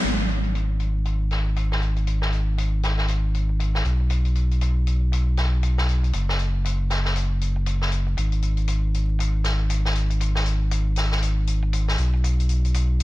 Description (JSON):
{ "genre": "deep house", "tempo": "118 BPM", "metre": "4/4", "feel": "swing 59% on 16ths", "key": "G# minor", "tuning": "A4 = 439 Hz", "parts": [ { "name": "sub bass with octave", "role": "bass", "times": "0.0-13.0 s", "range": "F#1 to B1", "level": "-21 LUFS", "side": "equal", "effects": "none" }, { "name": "electronic hi-hat", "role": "drums", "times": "0.0-12.9 s", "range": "none", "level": "-28 LUFS", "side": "equal", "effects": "low-pass filter on hats, low-pass filter on snare, low-pass filter on room" }, { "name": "vintage drum kit", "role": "drums", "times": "0.0-13.0 s", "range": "hi-hat, snare drum", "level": "-30 LUFS", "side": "left 2 dB", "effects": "high-pass filter on hats, low-pass filter on hats, soft clipping on snare, high-pass filter on snare, low-pass filter on snare, high-pass filter on room, low-pass filter on room" } ], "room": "light reverb", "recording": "dense, heavily limited modern master, vinyl crackle", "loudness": "-20 LUFS", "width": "side -18 dB against mid", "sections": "0.0-13.0 A section", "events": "band accent 0.0", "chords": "none" }